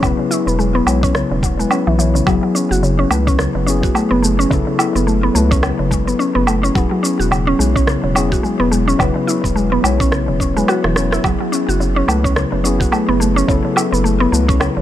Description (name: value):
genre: organic downtempo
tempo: 107 BPM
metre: 4/4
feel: swing 58% on 16ths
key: F# minor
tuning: A4 = 437 Hz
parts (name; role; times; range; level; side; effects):
- mellow tine electric piano; accompaniment; 0.0-14.8 s; F#3 to C#5; -20 LUFS; left 4 dB; sidechain pumping, low-pass filter, ping-pong delay
- mallet-like synth pluck; arpeggios; 0.0-14.8 s; C#3 to F#4; -18 LUFS; equal; chorus, ping-pong delay
- round analog bass; bass; 0.0-14.8 s; E1 to C#2; -19 LUFS; equal; sidechain pumping
- electronic kick drum; drums; 0.0-14.6 s; none; -19 LUFS; equal; none
- electronic woodblock, shaker and rim click; drums; 0.0-14.7 s; none; -22 LUFS; right 2 dB; overdrive
room: digital ambience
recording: none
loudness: -13 LUFS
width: side -12 dB against mid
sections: 0.0-14.8 A section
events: filter sweep on synth pluck 0.0-14.8; drum fill 10.7-11.2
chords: 0.0 E; 2.3 F#m7; 6.8 E; 11.2 F#m7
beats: | 0.03 0.59 1.15 1.71 | 2.27 2.83 3.39 3.95 | 4.51 5.07 5.63 6.19 | 6.75 7.32 7.88 8.44 | 9.00 9.56 10.12 10.68 | 11.24 11.80 12.36 12.92 | 13.48 14.04 14.61